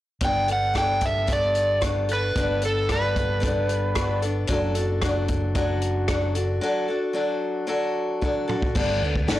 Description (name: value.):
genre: folk rock and heartland rock.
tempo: 112 BPM.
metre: 4/4.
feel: straight.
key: G major.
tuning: A4 = 440 Hz.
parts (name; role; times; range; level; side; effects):
overdriven slide guitar; melody; 0.2-4.2 s; A4 to G5; -24 LUFS; right 1 dB; plate reverb.
picked acoustic archtop guitar; accompaniment; 0.2-9.4 s; F#3 to A4; -26 LUFS; left 2 dB; plate reverb.
fingered electric bass; bass; 0.2-9.4 s; F#1 to D2; -27 LUFS; equal; none.
vintage drum kit; drums; 0.2-9.4 s; crash cymbal, hi-hat, kick drum, rim click, snare drum, toms; -28 LUFS; equal; soft clipping on snare.
room: moderate studio reverb, RT60 0.7 s.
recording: blown-out, overdriven recording, overdrive.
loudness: -21 LUFS.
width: side -14 dB against mid.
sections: 0.2-8.8 A section.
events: drum fill 8.2-8.8.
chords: 0.2 Gadd9; 4.5 D/F#; 8.8 Gadd9.